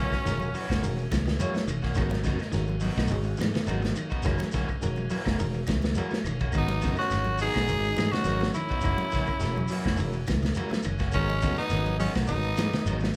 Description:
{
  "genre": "afrobeat",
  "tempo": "105 BPM",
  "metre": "4/4",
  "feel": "straight",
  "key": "G# minor",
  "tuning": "A4 = 439 Hz",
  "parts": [
    { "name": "raspy tenor saxophone", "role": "melody", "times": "0.0-1.1, 6.6-13.0 s", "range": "C#4 to G#4", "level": "-33 LUFS", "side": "equal", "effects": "none" },
    { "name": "trombone with bucket mute", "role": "second line", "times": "0.0-1.1, 6.6-13.0 s", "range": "F#3 to D#4", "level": "-41 LUFS", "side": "equal", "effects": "none" },
    { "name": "clean electric guitar", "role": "arpeggios", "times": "0.0-13.1 s", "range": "C#3 to F#3", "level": "-38 LUFS", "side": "equal", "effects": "none" },
    { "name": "electric guitar at the edge of break-up", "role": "stabs", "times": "0.0-13.0 s", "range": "D#3 to F#4", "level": "-40 LUFS", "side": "equal", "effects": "warbly pitch drift" },
    { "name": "fingered electric bass", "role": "bass", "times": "0.0-13.1 s", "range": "E1 to G#2", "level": "-33 LUFS", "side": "equal", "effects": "none" },
    { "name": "crunchy breakbeat drum kit", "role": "drums", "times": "0.1-13.2 s", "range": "hi-hat, kick drum, ride cymbal, snare drum", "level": "-33 LUFS", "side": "equal", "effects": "none" },
    { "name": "claves", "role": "percussion", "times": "0.1-12.7 s", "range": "none", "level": "-49 LUFS", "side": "equal", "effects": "none" },
    { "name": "shekere", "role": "percussion", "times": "0.1-13.2 s", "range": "none", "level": "-40 LUFS", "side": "equal", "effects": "none" },
    { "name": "reed electric piano", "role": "accompaniment", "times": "0.3-13.1 s", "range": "G#3 to C#5", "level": "-40 LUFS", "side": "equal", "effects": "overdrive, fast tremolo" },
    { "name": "congas", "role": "percussion", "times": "0.3-13.0 s", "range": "none", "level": "-39 LUFS", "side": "equal", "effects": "none" }
  ],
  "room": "moderate large studio reverb, RT60 1.3 s",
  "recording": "band playing live in one room",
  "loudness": "-27 LUFS",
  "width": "mono",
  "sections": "0.0-13.2 A section",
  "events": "none",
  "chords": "0.0 F#7; 2.0 G#m7; 4.3 F#7; 6.5 G#m7; 8.8 F#7; 11.1 G#m7",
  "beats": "0.26 0.83 1.40 | 1.97 2.54 3.11 3.68 | 4.25 4.83 5.40 5.97 | 6.54 7.12 7.69 8.26 | 8.84 9.41 9.99 10.56 | 11.14 11.71 12.29 12.87"
}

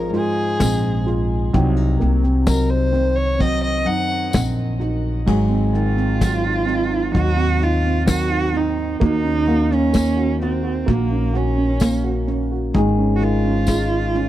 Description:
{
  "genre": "acoustic folk duo or small band",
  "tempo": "64 BPM",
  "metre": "4/4",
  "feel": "straight",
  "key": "unclear",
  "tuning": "A4 = 439 Hz",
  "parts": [
    { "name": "dark fiddle", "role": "melody", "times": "0.0-4.3 s", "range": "Ab4 to Gb5", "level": "-24 LUFS", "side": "left 1 dB", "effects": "tape echo" },
    { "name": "nylon-string guitar", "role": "accompaniment", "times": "0.0-14.3 s", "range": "Gb2 to Ab4", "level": "-24 LUFS", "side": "left 2 dB", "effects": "none" },
    { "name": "dark upright piano", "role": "arpeggios", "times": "0.0-14.3 s", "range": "Eb3 to Gb4", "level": "-24 LUFS", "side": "right 5 dB", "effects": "none" },
    { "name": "upright bass", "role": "bass", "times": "0.0-14.3 s", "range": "Ab1 to Eb2", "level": "-21 LUFS", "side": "left 1 dB", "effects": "none" },
    { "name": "soft brush drum kit", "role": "drums", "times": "0.1-14.3 s", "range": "crash cymbal, kick drum, snare drum", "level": "-20 LUFS", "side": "left 1 dB", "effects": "none" },
    { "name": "tambourine", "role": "percussion", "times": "0.6-13.9 s", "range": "none", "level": "-33 LUFS", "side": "left 5 dB", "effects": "none" },
    { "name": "warm cello", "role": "second line", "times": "5.8-14.3 s", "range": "Bb3 to Gb4", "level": "-22 LUFS", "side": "right 3 dB", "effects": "none" }
  ],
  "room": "small room ambience",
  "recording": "dry, close 1970s-style studio recording",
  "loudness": "-16 LUFS",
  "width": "side -13 dB against mid",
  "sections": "0.0-5.3 A section; 5.3-14.3 B section",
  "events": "fiddle solo 0.0-5.3; cello solo 5.3-14.3",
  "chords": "0.0 Fm/Ab; 1.5 Cdim; 5.3 Ab7; 9.0 Ebm7; 12.7 Absus4",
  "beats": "0.60 | 1.53 2.47 3.40 4.34 | 5.27 6.20 7.14 8.07 | 9.01 9.94 10.87 11.81 | 12.74 13.67"
}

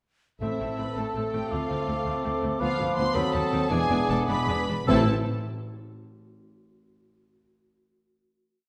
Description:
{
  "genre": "classical, dramatic, fast romantic movement for symphony orchestra",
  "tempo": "98-111 BPM (dotted quarters)",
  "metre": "6/8",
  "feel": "straight",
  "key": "A minor",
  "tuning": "A4 = 440 Hz",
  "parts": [
    { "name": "warm symphonic violin section", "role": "melody", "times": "0.4-5.1 s", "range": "E5 to C6", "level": "-36 LUFS", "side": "equal", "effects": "none" },
    { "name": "hollow concert flute", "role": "second line", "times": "0.4-5.1 s", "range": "D6 to E6", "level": "-37 LUFS", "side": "equal", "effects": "none" },
    { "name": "mellow clarinet", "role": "second line", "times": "0.4-5.0 s", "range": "B3 to C4", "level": "-36 LUFS", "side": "equal", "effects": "none" },
    { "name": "mellow cor anglais", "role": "second line", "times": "0.4-5.0 s", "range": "G#4 to B4", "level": "-37 LUFS", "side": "equal", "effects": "none" },
    { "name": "warm symphonic violin section", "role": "second line", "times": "0.4-5.1 s", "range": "E4 to C5", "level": "-40 LUFS", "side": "equal", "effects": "none" },
    { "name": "clear studio viola section", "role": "accompaniment", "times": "0.4-5.1 s", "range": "F3 to E4", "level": "-38 LUFS", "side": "equal", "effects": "none" },
    { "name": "warm bassoon", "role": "accompaniment", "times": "0.4-5.0 s", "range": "E3 to A3", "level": "-35 LUFS", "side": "equal", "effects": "none" },
    { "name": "warm French horn section", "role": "sustained chords", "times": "0.4-5.0 s", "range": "F3 to D4", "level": "-37 LUFS", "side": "equal", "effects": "none" },
    { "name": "dark symphonic cello section", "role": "bass", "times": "0.4-5.1 s", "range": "D2 to A2", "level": "-35 LUFS", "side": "equal", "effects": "none" },
    { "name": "warm symphonic double bass section", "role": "bass", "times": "0.4-5.1 s", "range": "E1 to D#2", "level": "-35 LUFS", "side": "equal", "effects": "none" },
    { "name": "timpani", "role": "percussion", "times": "0.4-0.9, 4.9-5.1 s", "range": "A2", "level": "-36 LUFS", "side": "equal", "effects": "none" }
  ],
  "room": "wet scoring stage reverb, RT60 1.4 s",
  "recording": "none",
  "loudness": "-26 LUFS",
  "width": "mono",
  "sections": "0.4-4.9 A section; 4.9-6.1 final chord",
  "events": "slowing down 2.1-4.9",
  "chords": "0.4 Am; 1.5 Dm7; 2.6 Bdim; 3.1 D#dim7; 3.7 E7; 4.9 Am",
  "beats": "| 0.41 0.96 | 1.51 2.06 | 2.60 3.15 | 3.71 4.28 | 4.88"
}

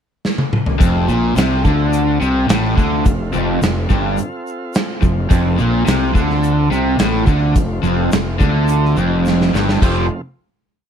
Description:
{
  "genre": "classic rock",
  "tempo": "106 BPM",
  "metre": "4/4",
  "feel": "straight",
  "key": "F major",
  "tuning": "A4 = 440 Hz",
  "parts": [
    { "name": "gated 80s drum kit", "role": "drums", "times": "0.2-10.0 s", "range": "crash cymbal, hi-hat, kick drum, snare drum, toms", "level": "-17 LUFS", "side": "equal", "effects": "none" },
    { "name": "tonewheel organ", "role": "sustained chords", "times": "0.8-10.2 s", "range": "C4 to F5", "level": "-29 LUFS", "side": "equal", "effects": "slow rotary speaker, overdrive" },
    { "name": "crunchy overdriven guitar", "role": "riff", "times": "0.8-10.1 s", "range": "F2 to F4", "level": "-19 LUFS", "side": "right 11 dB", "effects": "phaser" },
    { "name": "overdriven electric guitar", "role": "riff", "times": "0.8-10.1 s", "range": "F2 to F3", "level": "-20 LUFS", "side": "left 11 dB", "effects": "none" },
    { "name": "fuzz fingered electric bass", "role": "bass", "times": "0.8-10.1 s", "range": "F1 to D2", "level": "-19 LUFS", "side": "left 1 dB", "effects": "overdrive" },
    { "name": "tube shaker", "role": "percussion", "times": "0.8-10.1 s", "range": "none", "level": "-40 LUFS", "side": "left 13 dB", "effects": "none" }
  ],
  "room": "little or no reverb",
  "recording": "none",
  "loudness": "-13 LUFS",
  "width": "side -8 dB against mid",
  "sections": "0.0-0.8 pickup bar; 0.8-9.8 riff; 9.8-10.9 final chord",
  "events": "drum fill 0.2-0.8, 9.3-9.8",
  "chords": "0.0 N.C.; 0.8 F",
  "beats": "0.25 | 0.81 1.37 1.94 2.50 | 3.06 3.62 4.19 4.75 | 5.31 5.88 6.44 7.00 | 7.57 8.13 8.69 9.26 | 9.82"
}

